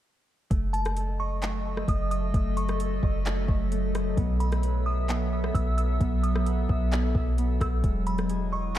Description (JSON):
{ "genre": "hip hop, atmospheric cloud-rap", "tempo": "131 BPM", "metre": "4/4", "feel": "half-time", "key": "F# dorian", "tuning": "A4 = 435 Hz", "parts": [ { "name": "warbly tape-like pad", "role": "sustained chords", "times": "1.1-8.8 s", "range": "F#3 to E5", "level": "-32 LUFS", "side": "equal", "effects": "chorus, built-in reverb, phaser, sidechain pumping" }, { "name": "Celtic harp", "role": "arpeggios", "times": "0.5-8.8 s", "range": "G#3 to E5", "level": "-37 LUFS", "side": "right 1 dB", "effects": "low-pass filter, diffuse ambient delay" }, { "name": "soft 808-style bass", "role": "bass", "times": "0.5-8.8 s", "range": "E1 to B1", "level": "-27 LUFS", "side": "equal", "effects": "none" }, { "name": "smooth R&B drum kit", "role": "drums", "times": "0.5-8.8 s", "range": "handclaps, hi-hat, kick drum, rim click", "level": "-30 LUFS", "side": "equal", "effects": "overdrive" }, { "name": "drifting glass-harmonics texture", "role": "texture", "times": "1.1-8.8 s", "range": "G#3 to E5", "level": "-41 LUFS", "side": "left 3 dB", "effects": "chorus, built-in reverb" }, { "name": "delicate synth tine bell", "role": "melody", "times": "0.7-8.8 s", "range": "A5 to E6", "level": "-36 LUFS", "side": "right 1 dB", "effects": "chorus, low-pass filter, diffuse ambient delay" } ], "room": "light reverb", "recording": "none", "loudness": "-24 LUFS", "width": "side -12 dB against mid", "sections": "0.5-8.8 A section", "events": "none", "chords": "0.5 F#m6; 4.2 B7sus4; 7.8 Emaj9" }